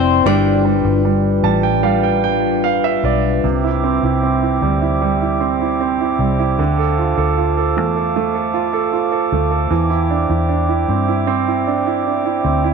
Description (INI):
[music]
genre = pop ballad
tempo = 76 BPM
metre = 4/4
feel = straight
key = unclear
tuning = A4 = 440 Hz
[part]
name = nylon-string guitar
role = melody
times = 0.0-1.0 s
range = C4 to D5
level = -18 LUFS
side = left 14 dB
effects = slapback echo
[part]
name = clear baby grand piano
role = accompaniment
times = 0.0-12.7 s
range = C3 to A5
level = -18 LUFS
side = right 11 dB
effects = none
[part]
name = glass harmonica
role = sustained chords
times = 0.0-12.7 s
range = G3 to D6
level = -20 LUFS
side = left 2 dB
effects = none
[part]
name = vintage muted fingered electric bass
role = bass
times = 0.0-12.7 s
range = F1 to G2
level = -20 LUFS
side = left 2 dB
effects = none
[sound]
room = wet plate reverb, RT60 3.0 s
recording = 1960s-style stereo with parts hard left and right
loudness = -14 LUFS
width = side -5 dB against mid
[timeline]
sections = 0.0-3.4 A section; 3.4-12.7 B section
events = grand piano fill 1.0-3.4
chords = 0.3 G7; 3.4 Cadd9; 6.6 Dm7; 9.7 Cadd9/E